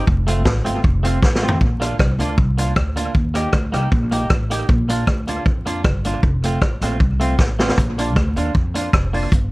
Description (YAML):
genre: ska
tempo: 156 BPM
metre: 4/4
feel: straight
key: Bb major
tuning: A4 = 439 Hz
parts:
  - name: clean electric guitar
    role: accompaniment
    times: 0.0-9.3 s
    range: A3 to G4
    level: -24 LUFS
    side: right 1 dB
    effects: lush chorus
  - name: upright bass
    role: bass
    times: 0.0-9.5 s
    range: F1 to F2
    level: -21 LUFS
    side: equal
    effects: none
  - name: vintage drum kit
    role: drums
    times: 0.1-9.4 s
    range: hi-hat, kick drum, rim click, snare drum, toms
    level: -18 LUFS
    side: equal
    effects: none
room: little or no reverb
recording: vinyl crackle, lossy compression artefacts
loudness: -16 LUFS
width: side -22 dB against mid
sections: 0.0-1.6 A section; 1.6-9.5 B section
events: drum fill 1.2-1.6, 7.4-7.8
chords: 0.1 F; 1.6 Bb; 3.1 Eb; 4.7 Bb; 6.2 F; 7.8 Bb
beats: | 0.07 0.46 0.84 1.22 | 1.61 1.99 2.38 2.76 | 3.15 3.53 3.92 4.30 | 4.69 5.07 5.46 5.84 | 6.23 6.62 7.00 7.39 | 7.77 8.16 8.54 8.93 | 9.32